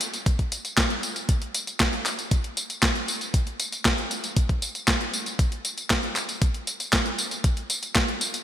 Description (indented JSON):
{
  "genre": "italo disco",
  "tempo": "117 BPM",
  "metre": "4/4",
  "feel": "straight",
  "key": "none",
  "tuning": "none",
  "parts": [
    { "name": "clean 12-bit digital drum machine", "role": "drums", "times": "0.0-8.4 s", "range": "handclaps, hi-hat, snare drum, tambourine", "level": "-25 LUFS", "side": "equal", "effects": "none" },
    { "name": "electronic kick drum", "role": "drums", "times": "0.3-8.1 s", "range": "none", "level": "-24 LUFS", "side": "equal", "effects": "none" }
  ],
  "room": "moderate lush hall reverb, RT60 2.1 s",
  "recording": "bright 1980s-style digital production",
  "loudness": "-23 LUFS",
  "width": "side -11 dB against mid",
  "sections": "0.0-8.4 A section",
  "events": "none",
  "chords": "none"
}